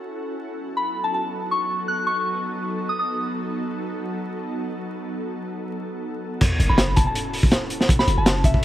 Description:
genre	drum and bass, jungle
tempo	162 BPM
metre	4/4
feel	swing 53% on 16ths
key	unclear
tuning	A4 = 439 Hz
part	ethereal airy pad	sustained chords	0.0-8.6 s	F#3 to A4	-29 LUFS	equal	ensemble chorus, built-in reverb
part	soft synth bell	melody	0.8-3.0, 6.7-8.6 s	E5 to F#6	-25 LUFS	left 1 dB	chorus, dub echo
part	crunchy breakbeat drum kit	drums	6.4-8.6 s	crash cymbal, hi-hat, kick drum, snare drum	-18 LUFS	equal	none
part	sub drop	sound effects	6.4-7.9 s	none	-30 LUFS	equal	none
part	long sustained 808-style bass	bass	6.6-8.5 s	F#1	-21 LUFS	equal	tube saturation
room	light reverb, small room ambience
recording	vinyl crackle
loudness	-21 LUFS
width	side -13 dB against mid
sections	0.0-6.4 A section; 6.4-8.6 B section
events	drop 6.4-8.6; impact 6.4-7.9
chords	0.5 B7/F#; 6.4 F#m7

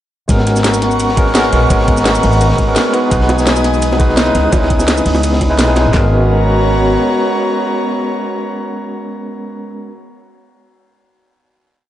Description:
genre	liquid drum and bass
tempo	170 BPM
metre	4/4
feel	swing 53% on 16ths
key	G# minor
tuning	A4 = 443 Hz
part	overdriven tine electric piano	accompaniment	0.3-9.9 s	G#3 to B4	-16 LUFS	equal	fast tremolo, tape echo
part	airy breathy pad	sustained chords	0.3-9.5 s	B3 to D#6	-18 LUFS	equal	chorus, sidechain pumping
part	upright bass	bass	0.3-7.0 s	G#1 to C#2	-15 LUFS	equal	tube saturation
part	crunchy breakbeat drum kit	drums	0.3-5.9 s	hi-hat, ride cymbal, snare drum	-23 LUFS	equal	high-pass filter on cymbals, high-pass filter on hats, high-pass filter on snare, high-pass filter on room
part	garage drum kit	drums	0.3-6.0 s	handclaps, kick drum, snare drum	-15 LUFS	equal	none
part	garage drum kit	drums	0.3-5.8 s	hi-hat, shaker, snare drum	-18 LUFS	equal	none
part	bongos	percussion	3.3-5.8 s	none	-24 LUFS	right 2 dB	none
room	moderate plate reverb, RT60 1.9 s, small room ambience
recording	dreamy mix soaked in reverb, nothing above 10.8 kHz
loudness	-11 LUFS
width	side -12 dB against mid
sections	0.3-5.9 drop; 5.9-8.8 final chord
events	drop 0.3-5.9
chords	0.3 G#m11; 2.9 B6; 4.3 C#m9; 5.9 G#m11

